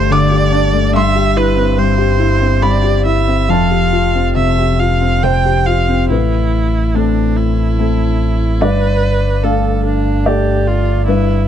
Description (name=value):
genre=neoclassical piano and strings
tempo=68-74 BPM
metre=3/4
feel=rubato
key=A minor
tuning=A4 = 440 Hz
part: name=felt-muted upright piano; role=accompaniment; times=0.0-11.5 s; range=F2 to E6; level=-15 LUFS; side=left 3 dB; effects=none
part: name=rich viola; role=accompaniment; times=0.0-11.5 s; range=D4 to G5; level=-18 LUFS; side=right 3 dB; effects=none
part: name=sub bass with octave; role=bass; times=0.0-11.5 s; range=F1 to A1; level=-16 LUFS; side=right 1 dB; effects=none
room=light reverb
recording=dark, warm production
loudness=-11 LUFS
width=side -10 dB against mid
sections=0.0-6.1 A section; 6.1-11.5 A section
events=none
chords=0.0 Gsus2; 1.0 C/G; 3.5 Fadd9; 6.1 Amadd9; 8.6 Gsus2